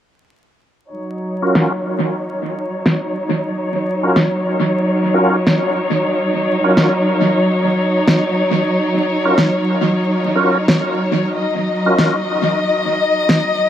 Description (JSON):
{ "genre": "glitch hop", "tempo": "92 BPM", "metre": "4/4", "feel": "swing 61% on 16ths", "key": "Eb minor", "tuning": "A4 = 440 Hz", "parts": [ { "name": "warm chamber string section", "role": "sustained chords", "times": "0.9-13.7 s", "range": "Gb3 to Eb5", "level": "-16 LUFS", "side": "equal", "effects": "low-pass filter" }, { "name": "tonewheel organ", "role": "stabs", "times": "1.4-12.2 s", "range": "Db4 to Bb4", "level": "-20 LUFS", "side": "equal", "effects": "chorus vibrato, slow rotary speaker, low-pass filter, analog delay" }, { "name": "electronic snare drum", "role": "drums", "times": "1.6-13.5 s", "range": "none", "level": "-18 LUFS", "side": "equal", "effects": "low-pass filter on snare, analog delay" } ], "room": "wet spring reverb, RT60 2.2 s", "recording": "echo-heavy mix, vinyl crackle", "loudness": "-14 LUFS", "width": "side -10 dB against mid", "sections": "0.9-13.7 A section", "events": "filter sweep on string section 0.9-13.7", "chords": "0.9 Ebm7", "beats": "| 0.90 1.55 2.21 2.86 | 3.51 4.16 4.81 5.47 | 6.12 6.77 7.42 8.07 | 8.73 9.38 10.03 10.68 | 11.34 11.99 12.64 13.29" }